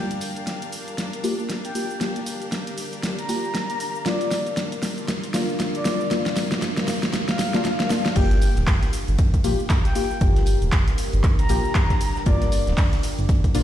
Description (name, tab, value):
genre	deep house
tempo	117 BPM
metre	4/4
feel	swing 59% on 16ths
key	G minor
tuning	A4 = 440 Hz
part	breathy flute-like synth lead	melody	0.0-12.6 s	D5 to Bb5	-30 LUFS	left 2 dB	chorus, ping-pong delay
part	deep dark ambient pad	sustained chords	0.0-13.6 s	G3 to G5	-34 LUFS	right 1 dB	chorus, built-in reverb, sidechain pumping
part	deep mellow chord stab	stabs	0.0-13.6 s	Bb3 to G4	-28 LUFS	left 3 dB	chorus, sidechain pumping, ping-pong delay
part	warm studio string section	texture	0.0-8.2 s	G3 to F5	-34 LUFS	left 2 dB	sidechain pumping
part	deep house drum kit	drums	0.1-13.6 s	crash cymbal, handclaps, hi-hat, shaker, snare drum	-27 LUFS	equal	overdrive
part	smooth synth bass	bass	8.2-13.6 s	D1 to Bb1	-21 LUFS	equal	sidechain pumping
part	electronic kick drum	drums	8.2-13.5 s	none	-20 LUFS	equal	overdrive
part	modern studio drum kit	drums	8.2-13.6 s	hi-hat, ride cymbal, snare drum	-39 LUFS	equal	high-pass filter on cymbals, high-pass filter on hats, high-pass filter on snare, high-pass filter on room
room	moderate lush hall reverb, RT60 1.5 s, studio reverb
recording	played on a big sound system in a bare room, stone room reverb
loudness	-20 LUFS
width	side -11 dB against mid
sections	0.0-8.2 A section; 8.2-13.6 B section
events	build-up 0.0-8.2; drum fill 0.0-8.2; filter sweep on synth stab 0.0-8.2; filter sweep on ambient pad 0.0-8.2; filter sweep on soft synth lead 0.0-8.2; drop 8.2-13.6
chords	0.0 Gm7; 4.1 Bb/G; 8.2 Gm7